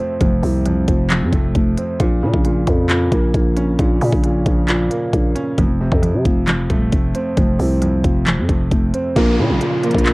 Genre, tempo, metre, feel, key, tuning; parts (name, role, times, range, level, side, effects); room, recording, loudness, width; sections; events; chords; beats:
hip hop, trap; 134 BPM; 4/4; half-time; Bb harmonic minor; A4 = 440 Hz
dark concert grand piano; accompaniment; 0.0-10.1 s; F2 to Db4; -20 LUFS; right 1 dB; cassette tape
growling 808-style bass; bass; 0.2-10.1 s; Eb1 to C3; -18 LUFS; equal
trap drum kit; drums; 0.2-10.1 s; handclaps, hi-hat, kick drum; -18 LUFS; equal
nylon-string guitar; melody; 9.2-10.1 s; Bb3 to C4; -19 LUFS; equal; cassette tape
hollow soft pad; sustained chords; 9.2-10.1 s; Db3 to F4; -26 LUFS; equal; chorus, cassette tape
downlifter; sound effects; 9.2-10.1 s; -25 LUFS; left 1 dB
little or no reverb; home recording on cassette; -14 LUFS; side -23 dB against mid
0.0-9.2 A section
0.0 F; 2.0 Bbm; 5.6 F; 9.2 Bbm
| 0.21 0.66 1.10 1.55 | 2.00 2.45 2.89 3.34 | 3.79 4.24 4.68 5.13 | 5.58 6.03 6.48 6.92 | 7.37 7.82 8.27 8.71 | 9.16 9.61 10.06